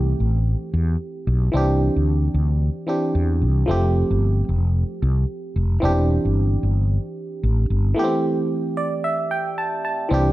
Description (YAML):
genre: afrobeats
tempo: 112 BPM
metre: 4/4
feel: swing 58% on 16ths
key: unclear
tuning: A4 = 440 Hz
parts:
  - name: barking FM electric piano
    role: accompaniment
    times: 0.0-10.3 s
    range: E3 to A5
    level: -23 LUFS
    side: right 1 dB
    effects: chorus
  - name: mellow fretless electric bass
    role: bass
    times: 0.0-10.3 s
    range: E1 to E2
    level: -18 LUFS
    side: equal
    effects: none
room: light reverb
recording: dark, warm production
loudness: -18 LUFS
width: side -16 dB against mid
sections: 0.0-10.1 A section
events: break 8.0-10.1; FM electric piano fill 8.5-10.1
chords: 0.0 Am7; 1.5 Cadd9; 3.7 Fadd9; 5.8 Cadd9/E